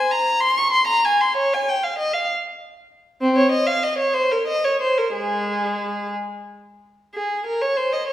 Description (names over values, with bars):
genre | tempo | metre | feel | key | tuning
classical, baroque-style suite movement for unaccompanied violin | 59-67 BPM (dotted quarters) | 6/8 | rubato | Ab major | A4 = 437 Hz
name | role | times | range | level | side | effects
rich violin | solo | 0.0-8.1 s | Ab3 to Db6 | -18 LUFS | equal | none
room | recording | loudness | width
wet recital hall reverb, RT60 1.5 s | heard from further back in the room | -18 LUFS | side -12 dB against mid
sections
0.0-7.1 A section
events
none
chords
none